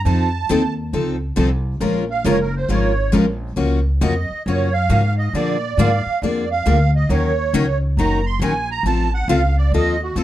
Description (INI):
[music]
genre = acoustic string swing (jazz manouche)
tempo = 136 BPM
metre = 4/4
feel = swing 65% on 8ths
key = Bb minor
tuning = A4 = 439 Hz
[part]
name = picked steel-string acoustic guitar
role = accompaniment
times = 0.0-3.2 s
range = F3 to Bb4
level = -24 LUFS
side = right 6 dB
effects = none
[part]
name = upright bass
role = bass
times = 0.0-10.2 s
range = Gb1 to Bb2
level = -19 LUFS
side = equal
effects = none
[part]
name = musette accordion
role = melody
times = 0.1-10.2 s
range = Gb4 to C6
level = -22 LUFS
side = right 5 dB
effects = plate reverb
[part]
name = picked steel-string acoustic guitar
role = accompaniment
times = 0.1-10.2 s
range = Db3 to Bb4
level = -20 LUFS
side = left 4 dB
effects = none
[sound]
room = light reverb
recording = dark, warm production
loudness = -16 LUFS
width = side -13 dB against mid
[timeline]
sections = 0.0-3.6 A section; 3.6-10.2 A section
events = accordion solo 0.0-3.6, 3.6-10.2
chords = 0.1 F7; 1.8 Bbm7; 3.6 Gbmaj7; 5.3 Bb7; 7.1 Ebm7; 8.8 F